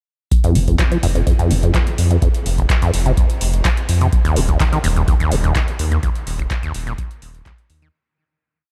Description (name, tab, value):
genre	acid house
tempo	126 BPM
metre	4/4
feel	straight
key	unclear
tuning	A4 = 440 Hz
part	electro analog drum machine	drums	0.3-7.9 s	handclaps, hi-hat	-28 LUFS	equal	none
part	electronic kick drum	drums	0.3-7.6 s	none	-20 LUFS	equal	none
part	acid bass, saw	riff	0.4-7.9 s	Eb1 to Ab3	-22 LUFS	equal	overdrive, sidechain pumping, analog delay
part	round analog bass	bass	0.6-7.9 s	Eb1 to F2	-20 LUFS	equal	sidechain pumping
room	light reverb, digital ambience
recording	none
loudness	-17 LUFS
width	mono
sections	0.3-7.9 groove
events	filter sweep on acid bass 0.3-7.9; fade-out 5.4-7.9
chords	none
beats	| 0.32 0.79 1.27 1.75 | 2.22 2.70 3.17 3.65 | 4.13 4.60 5.08 5.55 | 6.03 6.51 6.98 7.46